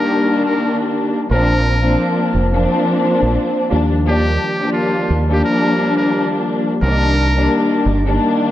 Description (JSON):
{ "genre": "hip hop, boom-bap hip-hop", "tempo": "87 BPM", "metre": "4/4", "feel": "swing 55% on 16ths", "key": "unclear", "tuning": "A4 = 440 Hz", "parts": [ { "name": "trumpet with metal mute", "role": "melody", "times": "0.0-7.7 s", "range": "F4 to Bb4", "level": "-22 LUFS", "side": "equal", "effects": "high-pass filter, low-pass filter, analog delay" }, { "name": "dark studio string section", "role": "accompaniment", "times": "0.0-8.5 s", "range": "Eb2 to D4", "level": "-15 LUFS", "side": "left 1 dB", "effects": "cassette tape, high-pass filter, low-pass filter" }, { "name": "deep dub fingered electric bass", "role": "bass", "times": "1.3-8.2 s", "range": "F1 to Eb2", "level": "-16 LUFS", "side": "right 1 dB", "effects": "none" } ], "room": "light reverb, studio reverb", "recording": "echo-heavy mix", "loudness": "-14 LUFS", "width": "side -13 dB against mid", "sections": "0.0-1.3 A section; 1.3-8.5 A section", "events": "none", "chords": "0.0 Cm7 (rootless); 1.3 Bbadd9; 3.7 Ebmaj7; 6.8 Cm7", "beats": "0.61 | 1.30 1.99 2.68 3.37 | 4.06 4.75 5.44 6.13 | 6.82 7.51 8.20" }